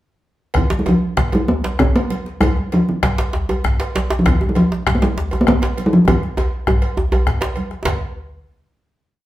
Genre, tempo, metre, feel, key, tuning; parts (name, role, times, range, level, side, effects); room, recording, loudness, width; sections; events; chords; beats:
west african traditional, West African drum ensemble; 132 BPM (dotted quarters); 12/8; straight; Eb major pentatonic; A4 = 440 Hz
bombo; percussion; 0.5-8.0 s; -20 LUFS; left 1 dB
congas; percussion; 0.5-8.0 s; -28 LUFS; right 2 dB
cowbell; percussion; 0.5-8.0 s; -30 LUFS; right 3 dB
talking drum; melody; 0.6-7.6 s; Eb3 to C4; -16 LUFS; equal
djembe; percussion; 0.6-8.0 s; -27 LUFS; left 1 dB
djembe; percussion; 0.7-8.0 s; -21 LUFS; right 1 dB
wet large studio reverb, RT60 0.8 s; band playing live in one room; -15 LUFS; side -15 dB against mid
0.5-7.8 A section; 7.8-9.2 final hit
speeding up 0.5-9.2; drum fill 6.1-7.8
| 0.54 1.01 1.48 1.95 | 2.41 2.88 3.34 3.80 | 4.26 4.72 5.17 5.62 | 6.08 6.52 6.97 7.41 | 7.85